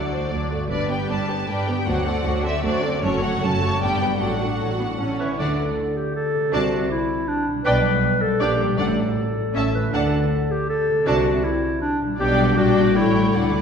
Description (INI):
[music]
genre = classical, dramatic, fast romantic movement for symphony orchestra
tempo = 156 BPM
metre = 3/4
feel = straight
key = D major from 3.0 s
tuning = A4 = 440 Hz
[part]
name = warm symphonic violin section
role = melody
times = 0.0-13.6 s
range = C#5 to A5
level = -29 LUFS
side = left 2 dB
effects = none
[part]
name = warm symphonic violin section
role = second line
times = 0.0-13.6 s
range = C#4 to F#5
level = -29 LUFS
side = left 1 dB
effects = none
[part]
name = warm symphonic viola section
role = accompaniment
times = 0.0-13.6 s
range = F#3 to F#4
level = -27 LUFS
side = right 2 dB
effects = none
[part]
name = concert harp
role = arpeggios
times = 0.0-13.6 s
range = F#2 to D5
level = -27 LUFS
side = left 4 dB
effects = none
[part]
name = rich symphonic cello section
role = bass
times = 0.0-13.6 s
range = D2 to D3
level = -28 LUFS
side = right 3 dB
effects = none
[part]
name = rich symphonic double bass section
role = bass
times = 0.0-13.6 s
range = F#1 to D2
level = -28 LUFS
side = right 3 dB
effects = none
[part]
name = warm clarinet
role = second line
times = 5.2-13.6 s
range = D4 to B4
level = -22 LUFS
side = left 1 dB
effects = none
[part]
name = timpani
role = percussion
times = 5.4-5.9, 8.8-9.3, 13.3-13.6 s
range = A2 to D3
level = -34 LUFS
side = equal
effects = none
[sound]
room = wet concert hall reverb, RT60 1.8 s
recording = heard from further back in the room, nothing above 10.7 kHz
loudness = -19 LUFS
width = side -6 dB against mid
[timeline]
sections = 0.0-5.4 A section; 5.4-13.6 B section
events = timpani fill 13.3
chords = 0.0 D; 0.7 G; 1.9 D7; 3.0 F#m; 3.8 G; 4.2 D/A; 5.0 A; 5.4 D; 6.5 D7/C; 7.7 G/B; 8.4 Gm/Bb; 8.8 D/A; 9.6 A; 9.9 D; 11.1 D7/C; 12.2 G/B; 12.6 Gm/Bb; 13.0 A7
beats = 0.32 | 0.71 1.10 1.49 | 1.88 2.26 2.65 | 3.04 3.43 3.81 | 4.21 4.60 5.00 | 5.40 5.78 6.16 | 6.54 6.91 7.29 | 7.66 8.03 8.40 | 8.79 9.17 9.56 | 9.94 10.32 10.70 | 11.07 11.44 11.82 | 12.20 12.57 12.96 | 13.35